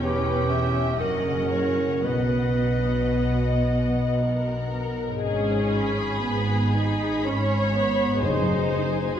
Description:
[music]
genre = classical, slow romantic movement for symphony orchestra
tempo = 55-64 BPM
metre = 3/4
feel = rubato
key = B major, G# minor from 5.2 s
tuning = A4 = 438 Hz
[part]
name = warm symphonic violin section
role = melody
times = 0.0-9.2 s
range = F#5 to B5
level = -37 LUFS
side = left 4 dB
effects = none
[part]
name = rich symphonic violin section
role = second line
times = 0.0-9.2 s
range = G#4 to E5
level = -29 LUFS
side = left 2 dB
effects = none
[part]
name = warm clarinet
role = second line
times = 0.0-4.2 s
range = G4 to B4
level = -28 LUFS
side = equal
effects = none
[part]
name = rich symphonic viola section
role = accompaniment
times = 0.0-9.2 s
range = B3 to F#4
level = -29 LUFS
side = right 2 dB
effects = none
[part]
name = concert harp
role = arpeggios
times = 0.0-9.2 s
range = E2 to G5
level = -30 LUFS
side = left 4 dB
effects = none
[part]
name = clear symphonic double bass section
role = bass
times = 0.0-9.2 s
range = E1 to B1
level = -28 LUFS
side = right 1 dB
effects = none
[part]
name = warm symphonic cello section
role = bass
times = 0.0-9.1 s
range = E2 to B2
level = -29 LUFS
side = right 2 dB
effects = none
[part]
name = timpani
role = percussion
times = 8.2-9.2 s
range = F#2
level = -29 LUFS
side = left 1 dB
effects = none
[sound]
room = wet recital hall reverb, RT60 1.5 s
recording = heard from further back in the room, nothing above 10.6 kHz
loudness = -21 LUFS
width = side -9 dB against mid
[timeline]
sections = 0.0-5.2 A section; 5.2-9.2 B section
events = none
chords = 0.0 C#m7b5/E; 1.0 F#7; 2.0 B; 5.2 G#m; 8.2 G#7/F#

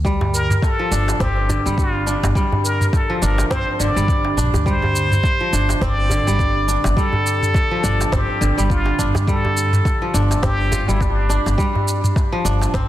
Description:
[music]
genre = organic downtempo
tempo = 104 BPM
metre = 4/4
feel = swing 58% on 16ths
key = unclear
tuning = A4 = 442 Hz
[part]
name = upright bass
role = bass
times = 0.0-12.8 s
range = G1 to G2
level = -20 LUFS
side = equal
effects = sidechain pumping
[part]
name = electronic kick drum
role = drums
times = 0.0-12.9 s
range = none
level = -20 LUFS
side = equal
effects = none
[part]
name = kora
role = arpeggios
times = 0.1-12.9 s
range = D3 to F4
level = -23 LUFS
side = equal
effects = digital delay
[part]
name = organic electronic drum kit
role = drums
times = 0.1-12.9 s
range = shaker, snare drum, toms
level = -24 LUFS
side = right 1 dB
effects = none
[part]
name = darbuka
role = percussion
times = 0.2-12.7 s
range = none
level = -25 LUFS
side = equal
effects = none
[part]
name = trumpet with plunger mute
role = melody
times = 0.3-11.5 s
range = D4 to D5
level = -23 LUFS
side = equal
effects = tape echo
[sound]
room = light reverb, small room reverb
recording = dense, heavily limited modern master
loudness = -16 LUFS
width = side -13 dB against mid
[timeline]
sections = 0.0-12.9 A section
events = none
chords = 0.0 G7(no3)

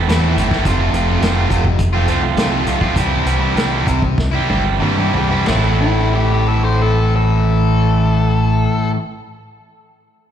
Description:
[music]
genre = classic rock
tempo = 90-106 BPM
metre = 4/4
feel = straight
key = A minor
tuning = A4 = 436 Hz
[part]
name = overdriven semi-hollow guitar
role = riff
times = 0.0-9.0 s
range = F2 to F4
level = -19 LUFS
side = right 10 dB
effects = spring reverb, slapback echo
[part]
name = modern bright fingered electric bass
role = bass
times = 0.0-8.7 s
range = F1 to G2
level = -17 LUFS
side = equal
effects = none
[part]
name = distorted electric guitar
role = riff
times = 0.1-9.0 s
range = F2 to F4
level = -20 LUFS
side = left 9 dB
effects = overdrive, slapback echo
[part]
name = vintage drum kit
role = drums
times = 0.1-5.6 s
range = crash cymbal, hi-hat, kick drum, snare drum, toms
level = -21 LUFS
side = equal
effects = none
[part]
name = octave-fuzz lead guitar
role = second line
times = 5.8-8.9 s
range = E4 to C5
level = -22 LUFS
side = left 5 dB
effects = distortion, slapback echo
[sound]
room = small room ambience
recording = live gig heard through the venue's PA, club reverb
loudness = -13 LUFS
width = side -9 dB against mid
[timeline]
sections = 0.0-5.5 A section; 5.5-8.1 B section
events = slowing down 0.7-5.5; drum fill 4.2-5.5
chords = 0.0 Am; 0.7 F; 3.0 C; 5.5 Am

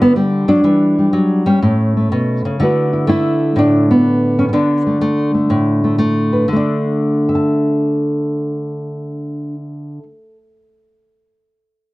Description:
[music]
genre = solo jazz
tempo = 124 BPM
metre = 4/4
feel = swing 67% on 8ths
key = D major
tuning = A4 = 439 Hz
[part]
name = nylon-string guitar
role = solo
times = 0.0-10.4 s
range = A2 to A5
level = -13 LUFS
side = equal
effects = none
[sound]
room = wet studio reverb, RT60 0.5 s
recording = cassette tape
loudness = -13 LUFS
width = side -19 dB against mid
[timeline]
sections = 0.0-6.5 A section; 6.5-10.3 B section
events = none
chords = 0.0 G5; 0.6 Em9; 1.6 A; 2.6 D69; 6.5 Dsus2

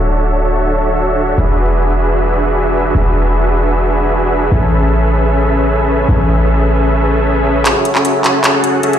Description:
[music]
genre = future bass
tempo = 153 BPM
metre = 4/4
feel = half-time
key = unclear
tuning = A4 = 440 Hz
[part]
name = dense compressed supersaw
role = riff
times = 0.0-9.0 s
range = C#4 to F#5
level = -13 LUFS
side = equal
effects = low-pass filter, dub echo
[part]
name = warm 808-style bass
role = bass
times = 0.0-7.6 s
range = D1 to A1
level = -14 LUFS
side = equal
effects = none
[part]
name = trap drum kit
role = drums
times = 7.7-9.0 s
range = handclaps, hi-hat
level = -14 LUFS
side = equal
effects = studio reverb
[sound]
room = light reverb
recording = played on a big sound system in a bare room, stone room reverb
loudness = -11 LUFS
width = side -9 dB against mid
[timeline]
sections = 0.0-7.7 A section; 7.7-9.0 B section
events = build-up 7.7-9.0; drum fill 7.7-9.0; filter sweep on supersaw synth 7.7-9.0; filter sweep 7.7-9.0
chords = 0.0 Dmaj9; 1.4 E9; 4.5 Amaj9; 7.7 F#m9

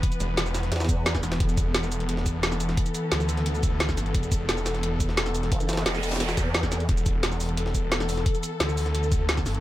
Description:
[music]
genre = dark technical drum and bass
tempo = 175 BPM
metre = 4/4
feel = straight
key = unclear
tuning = A4 = 441 Hz
[part]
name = dark chamber string section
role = sustained chords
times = 0.0-9.6 s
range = E3 to B4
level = -30 LUFS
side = left 2 dB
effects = sidechain pumping
[part]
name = drum and bass drum kit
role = drums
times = 0.0-9.6 s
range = hi-hat, shaker, snare drum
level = -29 LUFS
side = equal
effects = none
[part]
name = electronic kick drum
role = drums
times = 0.0-9.4 s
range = none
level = -26 LUFS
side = equal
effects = overdrive
[part]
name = jungle sampler-style drum kit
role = drums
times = 0.0-9.5 s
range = hi-hat, snare drum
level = -35 LUFS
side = equal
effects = none
[part]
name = snarling distorted saw bass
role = bass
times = 0.2-9.6 s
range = E1 to D2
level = -28 LUFS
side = equal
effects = distortion, overdrive, sidechain pumping
[part]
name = formant-sweep wobble bass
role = bass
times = 0.7-1.2, 5.5-6.9 s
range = E1 to E2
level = -27 LUFS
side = equal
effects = chorus
[part]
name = noise sweep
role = sound effects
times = 5.8-6.9 s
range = none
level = -34 LUFS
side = right 4 dB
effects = none
[sound]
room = digital ambience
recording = none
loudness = -23 LUFS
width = side -15 dB against mid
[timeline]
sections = 0.0-9.6 A section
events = noise sweep 5.8-6.9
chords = 0.0 E5

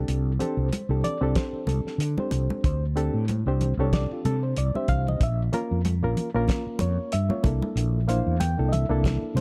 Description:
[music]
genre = electric jazz fusion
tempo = 94 BPM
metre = 4/4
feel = swing 56% on 16ths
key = unclear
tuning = A4 = 440 Hz
[part]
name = reed electric piano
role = accompaniment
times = 0.0-9.4 s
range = Bb3 to G5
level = -31 LUFS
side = equal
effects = fast tremolo
[part]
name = mellow fretless electric bass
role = bass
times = 0.0-9.4 s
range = Bb1 to D3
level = -27 LUFS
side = equal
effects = none
[part]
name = damped 70s drum kit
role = drums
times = 0.1-9.4 s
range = hi-hat, kick drum, snare drum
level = -30 LUFS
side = equal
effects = none
[part]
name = congas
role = percussion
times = 0.4-9.4 s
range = none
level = -34 LUFS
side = equal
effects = none
[sound]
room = studio reverb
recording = dark, warm production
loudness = -25 LUFS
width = mono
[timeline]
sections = 0.0-9.4 A section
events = drum fill 4.7-5.2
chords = 0.0 Csus2; 5.2 Bbm; 7.4 C13

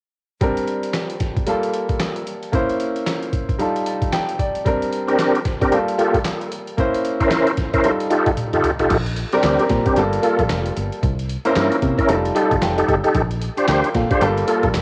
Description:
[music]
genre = R&B, new jack swing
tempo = 113 BPM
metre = 4/4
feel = swing 60% on 16ths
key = Bb major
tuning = A4 = 438 Hz
[part]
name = warm baby grand piano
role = accompaniment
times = 0.4-14.8 s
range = G3 to A5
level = -24 LUFS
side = equal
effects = cassette tape, plate reverb
[part]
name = boom bap sampler-style drum kit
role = drums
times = 0.4-14.8 s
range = crash cymbal, handclaps, hi-hat, kick drum, snare drum, toms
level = -27 LUFS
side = equal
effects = cassette tape
[part]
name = tonewheel organ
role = stabs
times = 5.1-14.7 s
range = Bb3 to C5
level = -21 LUFS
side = equal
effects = chorus vibrato, fast rotary speaker, cassette tape, analog delay, plate reverb
[part]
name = fingered electric bass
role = bass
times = 8.9-14.8 s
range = F1 to C3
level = -25 LUFS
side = equal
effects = none
[sound]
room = moderate small room reverb, RT60 0.5 s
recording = home recording on cassette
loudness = -20 LUFS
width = mono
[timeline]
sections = 0.4-8.9 A section; 8.9-14.8 B section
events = grand piano fill 3.6-4.7, 12.4-13.2; drum fill 8.4-8.9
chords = 0.4 Bb69; 1.5 Gm9; 2.5 C7b9; 3.6 F9; 4.7 Bb69; 5.7 Gm9; 6.8 C7b9; 7.8 F9; 8.9 Bb69; 10.0 Gm9; 11.0 C7b9; 12.1 F9; 13.2 Bb69; 14.2 Gm9

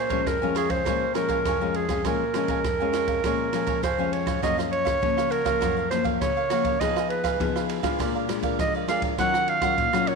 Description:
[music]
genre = samba and choro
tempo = 101 BPM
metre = 4/4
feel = straight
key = Bb minor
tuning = A4 = 439 Hz
[part]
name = clear clarinet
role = melody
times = 0.0-10.2 s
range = Ab4 to Gb5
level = -25 LUFS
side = right 3 dB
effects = none
[part]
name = cavaquinho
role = accompaniment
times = 0.0-10.2 s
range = Eb4 to Ab5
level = -30 LUFS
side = right 11 dB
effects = none
[part]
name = nylon-string guitar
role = accompaniment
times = 0.0-10.2 s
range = F2 to Ab4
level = -28 LUFS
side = left 12 dB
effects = none
[part]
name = open jazz drum kit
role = drums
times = 0.1-10.2 s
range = kick drum, ride cymbal, rim click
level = -30 LUFS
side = right 3 dB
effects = none
[sound]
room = moderate echo chamber reverb, RT60 1.4 s, studio ambience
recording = 1960s-style stereo with parts hard left and right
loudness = -22 LUFS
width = side -4 dB against mid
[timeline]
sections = 0.0-4.4 A section; 4.4-10.2 B section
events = none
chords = 0.0 Bbm7; 4.4 Gbmaj7; 6.8 Fm7b5; 8.0 Bb7; 9.2 Ebm9

